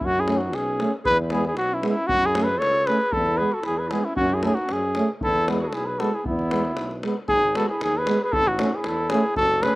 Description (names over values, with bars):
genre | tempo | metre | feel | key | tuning
balkan folk, Balkan brass band | 115 BPM | 2/4 | straight | E major | A4 = 441 Hz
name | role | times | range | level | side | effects
mellow cornet | melody | 0.0-9.8 s | E4 to C#5 | -22 LUFS | equal | none
mellow clarinet | second line | 0.0-9.8 s | B3 to A4 | -32 LUFS | right 1 dB | slapback echo
warm tuba | bass | 0.0-9.7 s | F#1 to F#2 | -29 LUFS | equal | none
davul | percussion | 0.0-9.8 s | none | -32 LUFS | left 1 dB | none
clear euphonium | accompaniment | 0.3-9.7 s | B3 to C#4 | -30 LUFS | left 3 dB | none
mellow euphonium | accompaniment | 0.3-9.7 s | G#3 to A3 | -26 LUFS | right 3 dB | none
room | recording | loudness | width
little or no reverb | recorded outdoors, with no room sound | -20 LUFS | side -20 dB against mid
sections
0.0-7.3 A section; 7.3-9.8 B section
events
none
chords
0.0 F#m; 1.1 E; 2.1 F#m; 3.1 E; 4.2 F#m; 5.2 E; 7.3 G#m; 8.3 A